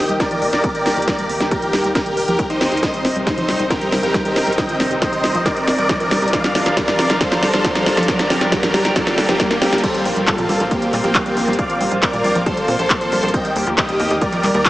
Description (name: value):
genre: uplifting trance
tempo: 137 BPM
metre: 4/4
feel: straight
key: unclear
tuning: A4 = 441 Hz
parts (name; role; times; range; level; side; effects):
- big supersaw lead; melody; 0.0-14.7 s; Bb3 to G5; -20 LUFS; equal; sidechain pumping, diffuse ambient delay
- lush unison pad; sustained chords; 0.0-14.7 s; C3 to Bb4; -22 LUFS; equal; chorus, sidechain pumping
- wide unison pluck; arpeggios; 0.0-14.7 s; F3 to C4; -25 LUFS; right 1 dB; cassette tape, sidechain pumping, diffuse ambient delay
- tight sequencer bass; bass; 0.0-14.6 s; Eb1 to Bb2; -29 LUFS; equal; sidechain pumping
- riser and swell; sound effects; 3.4-9.8 s; none; -28 LUFS; right 1 dB; none
- techno drum kit; drums; 0.1-14.7 s; crash cymbal, handclaps, hi-hat, snare drum; -21 LUFS; equal; sidechain pumping on hats, sidechain pumping on cymbals
- electronic kick drum; drums; 0.2-14.7 s; none; -24 LUFS; equal; none
room: wet huge ambient reverb, RT60 7.6 s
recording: dreamy mix soaked in reverb, small speaker sound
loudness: -15 LUFS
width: side -16 dB against mid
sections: 0.0-9.8 A section; 9.8-14.7 B section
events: build-up 0.0-9.8; drum fill 0.0-9.8; filter sweep on synth pluck 0.0-9.8; swell 9.0-9.8; drop 9.8-14.7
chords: 0.0 Eb; 2.8 Cm; 6.3 Gm7; 9.8 Bbsus2; 13.3 Ebmaj7